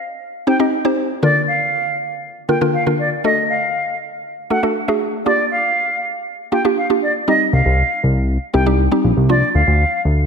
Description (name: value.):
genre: dance-pop.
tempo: 119 BPM.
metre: 4/4.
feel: straight.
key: C minor.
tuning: A4 = 442 Hz.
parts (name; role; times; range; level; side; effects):
reedy silver concert flute; melody; 0.5-10.0 s; D5 to G5; -19 LUFS; equal; analog delay.
mallet-like synth pluck; accompaniment; 0.5-9.9 s; D3 to Eb5; -18 LUFS; equal; chorus, phaser.
fat analog bass; bass; 7.5-10.3 s; Bb1 to D2; -14 LUFS; equal; none.
room: moderate lush hall reverb, RT60 2.2 s.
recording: dreamy mix soaked in reverb.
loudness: -15 LUFS.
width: side -6 dB against mid.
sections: 0.0-10.3 A section.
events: none.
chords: 0.0 Cm; 1.2 Bb/D; 3.2 D; 5.3 Gm7; 7.3 Cm; 9.3 Bb.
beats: 0.22 0.72 | 1.23 1.73 2.24 2.74 | 3.24 3.75 4.25 4.76 | 5.26 5.76 6.27 6.77 | 7.28 7.78 8.29 8.79 | 9.29 9.80.